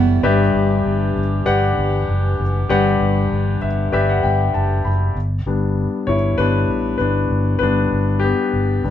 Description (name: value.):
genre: piano-driven pop.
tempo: 98 BPM.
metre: 4/4.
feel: swing 56% on 16ths.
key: unclear.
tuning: A4 = 441 Hz.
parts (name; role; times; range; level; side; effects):
clear concert grand piano; accompaniment; 0.0-8.9 s; G2 to B5; -18 LUFS; left 3 dB; none.
mellow woodwind section; sustained chords; 0.0-5.1 s; E3 to G4; -28 LUFS; equal; none.
fingered electric bass; bass; 0.0-8.9 s; F#1 to A1; -19 LUFS; equal; none.
room: moderate studio reverb, RT60 0.6 s.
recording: band playing live in one room.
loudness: -16 LUFS.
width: side -10 dB against mid.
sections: 0.2-5.2 A section; 5.2-8.9 B section.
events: grand piano fill 3.3-5.2; grand piano solo 5.2-8.9.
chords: 0.2 Em7; 5.2 G.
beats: | 0.23 0.85 1.46 2.08 | 2.69 3.31 3.92 4.54 | 5.15 5.77 6.38 7.00 | 7.61 8.22 8.84.